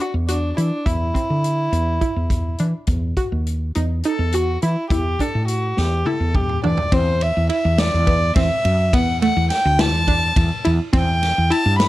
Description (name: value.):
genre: progressive instrumental, band music in an uneven meter.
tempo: 208 BPM (eighths).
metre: 7/8.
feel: straight.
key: unclear.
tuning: A4 = 441 Hz.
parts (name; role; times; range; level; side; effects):
warm violin; melody; 0.0-11.9 s; D4 to B5; -22 LUFS; equal; none.
analog pluck; arpeggios; 0.0-11.9 s; A3 to F#4; -24 LUFS; right 1 dB; chorus.
woody fretless electric bass; bass; 0.1-11.9 s; D2 to E3; -20 LUFS; equal; none.
vintage drum kit; drums; 0.3-11.9 s; hi-hat, kick drum, ride cymbal, snare drum, toms; -23 LUFS; equal; none.
room: light reverb.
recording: none.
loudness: -17 LUFS.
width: side -16 dB against mid.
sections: 0.0-6.9 A section; 6.9-11.9 B section.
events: drum fill 5.8-6.9.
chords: 0.0 Bmadd11/E (rootless); 0.9 Cadd9/E; 2.9 D#m; 4.9 Em11; 6.9 D9/E; 8.9 Dadd9; 10.9 C/E.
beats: 0.28 0.57 | 0.86 1.15 1.44 1.73 2.02 2.31 2.60 | 2.89 3.18 3.47 3.76 4.04 4.33 4.62 | 4.91 5.20 5.49 5.78 6.07 6.35 6.64 | 6.93 7.22 7.50 7.79 8.08 8.37 8.65 | 8.94 9.22 9.51 9.80 10.09 10.37 10.66 | 10.95 11.23 11.52 11.80.